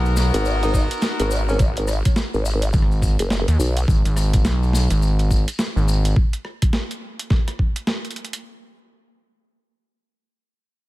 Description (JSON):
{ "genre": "glitch hop", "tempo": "105 BPM", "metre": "4/4", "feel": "swing 61% on 16ths", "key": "G# minor", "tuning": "A4 = 439 Hz", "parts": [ { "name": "bright horn section", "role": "stabs", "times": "0.0-1.9 s", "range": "B3 to A#4", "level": "-27 LUFS", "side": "left 2 dB", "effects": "vintage 12-bit sampler grit, sidechain pumping, analog delay" }, { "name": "gritty driven synth bass", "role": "bass", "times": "0.0-6.1 s", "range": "G#1 to D#2", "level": "-18 LUFS", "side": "equal", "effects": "tube saturation" }, { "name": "maracas", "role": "percussion", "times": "0.1-6.1 s", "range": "none", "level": "-33 LUFS", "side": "left 3 dB", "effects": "none" }, { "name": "boom bap sampler-style drum kit", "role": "drums", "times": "0.2-8.4 s", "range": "hi-hat, rim click, snare drum", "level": "-27 LUFS", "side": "right 1 dB", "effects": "overdrive" }, { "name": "vowel-sweep wobble bass", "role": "bass", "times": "0.3-3.9 s", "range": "F#1 to B1", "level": "-20 LUFS", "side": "equal", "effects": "chorus" }, { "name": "growling tenor saxophone", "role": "melody", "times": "0.6-1.6 s", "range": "C#4 to D#4", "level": "-33 LUFS", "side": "left 1 dB", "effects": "none" }, { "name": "electronic kick drum", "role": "drums", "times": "0.7-7.7 s", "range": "none", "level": "-18 LUFS", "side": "equal", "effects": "overdrive" } ], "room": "little or no reverb", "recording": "none", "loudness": "-17 LUFS", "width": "side -18 dB against mid", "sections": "0.0-8.5 A section", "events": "drop 0.0-8.5", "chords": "0.0 G#m9" }